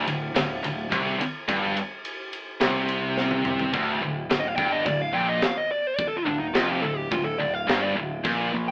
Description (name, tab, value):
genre	heavy metal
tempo	106 BPM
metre	4/4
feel	straight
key	D phrygian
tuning	A4 = 440 Hz
part	heavy high-gain guitar	riff	0.0-8.7 s	D2 to C3	-32 LUFS	equal	distortion
part	heavy high-gain guitar	riff	0.0-8.7 s	D2 to C3	-31 LUFS	equal	distortion
part	growling picked electric bass	bass	0.0-8.7 s	D1 to C2	-36 LUFS	equal	overdrive
part	tight metal drum kit	drums	0.1-8.4 s	crash cymbal, kick drum, ride cymbal, snare drum, toms	-31 LUFS	equal	none
part	dark smooth lead guitar	melody	4.4-8.7 s	D4 to G5	-28 LUFS	equal	overdrive
room	light reverb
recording	band playing live in one room, AM radio sound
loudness	-25 LUFS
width	mono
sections	0.0-3.7 A section; 3.7-8.7 B section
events	half time 0.0-3.7; drum fill 3.2-3.7; lead electric guitar solo 3.7-8.7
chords	0.0 D7sus4; 3.7 Dm